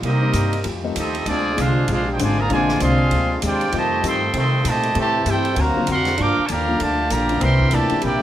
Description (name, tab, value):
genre	jazz, big band swing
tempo	195 BPM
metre	4/4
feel	swing 61% on 8ths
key	F major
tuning	A4 = 441 Hz
part	clear trumpet section	melody	0.0-8.2 s	C4 to D6	-21 LUFS	right 1 dB	none
part	clear trombone section	second line	0.0-8.2 s	Bb2 to G4	-25 LUFS	right 2 dB	none
part	vintage hollow-body jazz guitar	accompaniment	0.0-8.2 s	G2 to A#4	-29 LUFS	left 5 dB	none
part	warm trombone section	sustained chords	0.0-8.2 s	A#2 to F#4	-30 LUFS	left 1 dB	none
part	upright bass	bass	0.0-8.2 s	Ab1 to C3	-22 LUFS	equal	none
part	swinging big-band drum kit	drums	0.0-8.1 s	hi-hat, kick drum, ride cymbal, snare drum	-31 LUFS	right 2 dB	none
part	warm grand piano	accompaniment	0.2-8.0 s	D3 to G4	-27 LUFS	left 5 dB	none
room	moderate large studio reverb, RT60 0.9 s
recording	none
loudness	-17 LUFS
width	side -12 dB against mid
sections	0.0-8.2 A section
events	none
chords	0.0 Cm7; 0.7 F9; 1.3 Bb9; 3.7 F9; 5.0 Am7; 5.6 D7alt; 6.2 Gm7; 7.4 C9